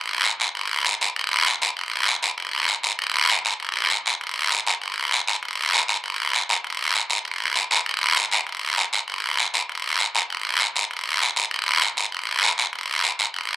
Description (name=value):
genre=latin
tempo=197 BPM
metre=4/4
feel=straight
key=none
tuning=none
part: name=guiro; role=percussion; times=0.2-13.6 s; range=none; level=-20 LUFS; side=equal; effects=none
room=little or no reverb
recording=recorded outdoors, with no room sound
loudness=-20 LUFS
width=side -16 dB against mid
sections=0.0-3.0 A section; 3.0-13.6 B section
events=none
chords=none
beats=0.24 | 0.55 0.85 1.16 1.46 | 1.77 2.07 2.38 2.68 | 2.99 3.29 3.60 3.90 | 4.21 4.51 4.81 5.12 | 5.42 5.73 6.03 6.34 | 6.64 6.95 7.25 7.55 | 7.86 8.16 8.47 8.77 | 9.08 9.38 9.69 9.99 | 10.29 10.60 10.90 11.21 | 11.51 11.82 12.12 12.43 | 12.73 13.04 13.34